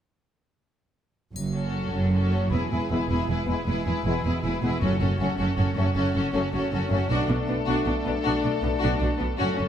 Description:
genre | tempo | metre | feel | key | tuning
cinematic, heroic adventure film score | 105 BPM (dotted quarters) | 6/8 | straight | F# minor | A4 = 444 Hz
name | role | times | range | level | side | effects
rich symphonic double bass section | bass | 1.3-9.7 s | E1 to B1 | -28 LUFS | right 2 dB | none
rich symphonic cello section | bass | 1.4-9.7 s | E2 to B2 | -28 LUFS | right 1 dB | none
triangle | percussion | 1.4-2.1 s | none | -44 LUFS | left 6 dB | none
rich studio violin section | melody | 1.5-9.7 s | A4 to B4 | -35 LUFS | left 6 dB | none
clear symphonic violin section | second line | 1.5-9.6 s | B3 to G#4 | -33 LUFS | left 4 dB | none
clear symphonic viola section | accompaniment | 1.5-9.7 s | C#4 to E4 | -30 LUFS | right 1 dB | none
warm French horn section | sustained chords | 2.9-9.7 s | G#3 to D4 | -31 LUFS | left 4 dB | none
timpani | percussion | 4.8-5.3 s | F#2 | -31 LUFS | left 1 dB | none
room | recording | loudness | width
moderate scoring stage reverb, RT60 1.8 s | none | -23 LUFS | side -9 dB against mid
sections
1.3-2.5 A section; 2.5-9.7 B section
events
build-up 2.5-9.7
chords
1.3 F#m; 2.5 E; 4.8 F#m; 7.1 Bm7

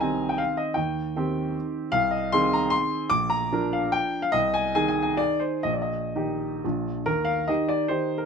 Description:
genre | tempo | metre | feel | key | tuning
classical, romantic triple-time dance for piano with dotted rhythms | 113-161 BPM | 3/4 | rubato | Eb major | A4 = 440 Hz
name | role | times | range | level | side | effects
clear baby grand piano | solo | 0.0-8.3 s | Bb1 to D6 | -23 LUFS | equal | none
room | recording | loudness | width
light reverb | close, detailed microphones | -23 LUFS | side -6 dB against mid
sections
0.0-7.1 A section; 7.1-8.3 B section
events
none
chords
0.0 Cm; 0.8 Cm/Eb; 1.9 Ab/C; 3.1 Bb; 4.3 Ab/C; 5.6 Eb/Bb; 6.6 Bb; 7.1 Eb

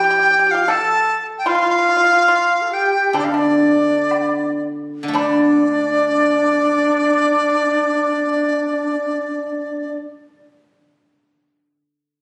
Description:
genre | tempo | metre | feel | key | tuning
chinese traditional, Chinese chamber ensemble | 57-82 BPM | 4/4 | rubato | D yu mode | A4 = 441 Hz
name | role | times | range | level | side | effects
reedy dizi | melody | 0.0-10.0 s | D5 to A5 | -19 LUFS | equal | none
pipa | second line | 0.0-9.9 s | D4 to A4 | -26 LUFS | equal | none
xiao | second line | 0.0-10.0 s | D4 to A4 | -25 LUFS | equal | none
steel-string zither | accompaniment | 0.0-11.7 s | D3 to D4 | -22 LUFS | equal | none
woodblock | percussion | 0.7-5.6 s | none | -32 LUFS | equal | none
room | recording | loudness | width
moderate recital hall reverb, RT60 1.5 s | recorded on a phone in the room, club reverb | -17 LUFS | mono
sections
0.0-5.2 A section; 5.2-9.3 B section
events
slowing down 0.0-5.2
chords
none

